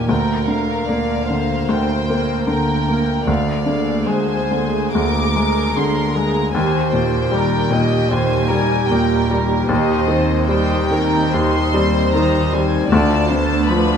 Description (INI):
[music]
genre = classical, romantic movement for piano and orchestra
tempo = 76 BPM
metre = 4/4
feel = rubato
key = Eb major, C minor from 9.7 s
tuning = A4 = 441 Hz
[part]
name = clear baby grand piano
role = melody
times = 0.0-14.0 s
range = D2 to Bb3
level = -18 LUFS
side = left 3 dB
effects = none
[part]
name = warm studio violin section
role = melody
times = 0.0-14.0 s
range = Eb5 to D6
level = -25 LUFS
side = left 4 dB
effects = none
[part]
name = warm studio violin section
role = second line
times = 0.0-14.0 s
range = Bb4 to Eb5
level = -24 LUFS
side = equal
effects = none
[part]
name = warm studio viola section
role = accompaniment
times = 0.0-14.0 s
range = Bb3 to Bb4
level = -23 LUFS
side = right 4 dB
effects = none
[part]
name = rich studio double bass section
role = bass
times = 0.1-13.7 s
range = D2 to Eb2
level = -27 LUFS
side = right 5 dB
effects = none
[part]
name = warm studio cello section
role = bass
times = 0.1-14.0 s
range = D2 to Eb2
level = -23 LUFS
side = right 5 dB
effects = none
[sound]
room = light reverb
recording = close, detailed microphones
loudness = -15 LUFS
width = side -7 dB against mid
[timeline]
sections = 0.0-14.0 A section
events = none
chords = 0.1 Bb/D; 3.3 Bb7/D; 6.6 Eb; 9.7 Cm/Eb; 12.9 Bdim/D